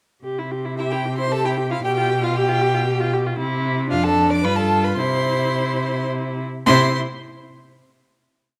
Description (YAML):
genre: quick classical-period movement for string quartet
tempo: 106-117 BPM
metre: 3/4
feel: straight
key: C major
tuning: A4 = 439 Hz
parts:
  - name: warm viola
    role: accompaniment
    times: 0.2-7.0 s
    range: D4 to G4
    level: -27 LUFS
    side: equal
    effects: none
  - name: rich cello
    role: bass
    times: 0.2-7.0 s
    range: F2 to C3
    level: -25 LUFS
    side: equal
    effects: none
  - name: rich violin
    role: melody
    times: 0.8-7.0 s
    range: E5 to D6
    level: -27 LUFS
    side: equal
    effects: none
  - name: rich violin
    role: second line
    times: 0.8-7.0 s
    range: E4 to D5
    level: -26 LUFS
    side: equal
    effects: none
room: moderate recital hall reverb, RT60 1.7 s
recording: none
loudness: -21 LUFS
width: mono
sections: 0.2-6.7 A section; 6.7-8.3 final chord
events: none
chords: 0.2 C; 1.8 G7/B; 3.4 C; 3.9 Dm/F; 4.5 G9; 5.0 C